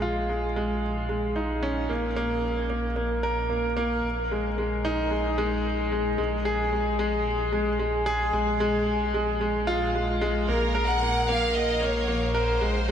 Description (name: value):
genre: piano and strings electronica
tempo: 112 BPM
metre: 4/4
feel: straight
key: Bb minor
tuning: A4 = 442 Hz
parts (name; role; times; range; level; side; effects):
- clear baby grand piano; riff; 0.0-12.9 s; Ab3 to Bb4; -25 LUFS; equal; diffuse ambient delay
- dark detuned saw bass; bass; 0.0-12.9 s; Bb1; -30 LUFS; equal; none
- warm symphonic violin section; melody; 10.5-12.9 s; Bb4 to Gb5; -27 LUFS; left 1 dB; diffuse ambient delay
room: wet huge ambient reverb, RT60 8.3 s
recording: dreamy mix soaked in reverb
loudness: -24 LUFS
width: side -8 dB against mid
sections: 0.0-10.5 A section; 10.5-12.9 B section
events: build-up 0.0-10.5; drop 10.5-12.9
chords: 0.0 Dbadd9/Bb; 1.9 N.C.; 4.0 Absus2/Bb; 8.3 Fmadd11/Bb; 10.5 Bbm